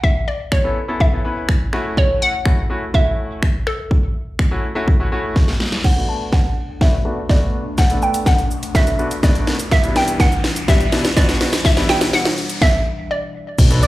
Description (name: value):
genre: dance-pop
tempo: 124 BPM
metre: 4/4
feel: straight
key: B minor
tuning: A4 = 438 Hz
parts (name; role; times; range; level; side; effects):
- hollow square pluck; melody; 0.0-13.6 s; A4 to A5; -22 LUFS; equal; chorus, low-pass filter, slapback echo, tape echo
- house drum kit; drums; 0.0-13.9 s; crash cymbal, finger snaps, hi-hat, kick drum, shaker, snare drum; -16 LUFS; equal; none
- bright concert grand piano; accompaniment; 0.6-13.9 s; B2 to B4; -24 LUFS; left 1 dB; sidechain pumping, low-pass filter, slapback echo
- glassy FM pad; sustained chords; 6.1-13.9 s; B2 to D4; -29 LUFS; left 1 dB; ensemble chorus, built-in reverb, sidechain pumping, low-pass filter
- riser and downlifter; sound effects; 7.6-13.9 s; none; -30 LUFS; left 1 dB; slapback echo
- fat analog bass; bass; 13.6-13.8 s; B1; -13 LUFS; equal; sidechain pumping
- octave-doubled lead; melody; 13.8-13.9 s; D5; -16 LUFS; right 2 dB; chorus, sidechain pumping
room: light reverb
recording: live gig heard through the venue's PA, club reverb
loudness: -15 LUFS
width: side -17 dB against mid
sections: 0.0-5.8 A section; 5.8-13.6 B section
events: drum fill 5.4-5.8, 5.8-12.6; build-up 5.8-13.6; filter sweep 5.8-13.6; riser 7.6-13.6; stop 12.6-13.6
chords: 0.0 Aadd9; 1.7 F#m7; 5.8 Bm7; 9.7 Em7/B